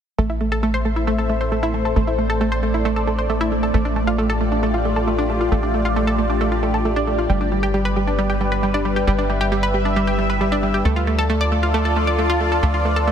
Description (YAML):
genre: trance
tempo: 135 BPM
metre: 4/4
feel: straight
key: A minor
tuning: A4 = 441 Hz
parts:
  - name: lush unison pad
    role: sustained chords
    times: 0.2-13.1 s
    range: G3 to E5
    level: -22 LUFS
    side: left 1 dB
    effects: chorus, phaser
  - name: analog pluck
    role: arpeggios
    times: 0.2-13.1 s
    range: G3 to D5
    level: -22 LUFS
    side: right 2 dB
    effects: chorus, tape echo
  - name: tight sequencer bass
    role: bass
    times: 0.2-13.1 s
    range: G1 to D2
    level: -22 LUFS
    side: equal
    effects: none
room: light reverb, digital ambience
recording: dense, heavily limited modern master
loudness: -17 LUFS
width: side -8 dB against mid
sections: 0.2-13.1 A section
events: filter sweep on synth pluck 0.2-13.1; filter sweep on analog synth pad 0.2-13.1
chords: 0.2 Am; 3.7 F6/A; 7.3 G; 10.9 Dm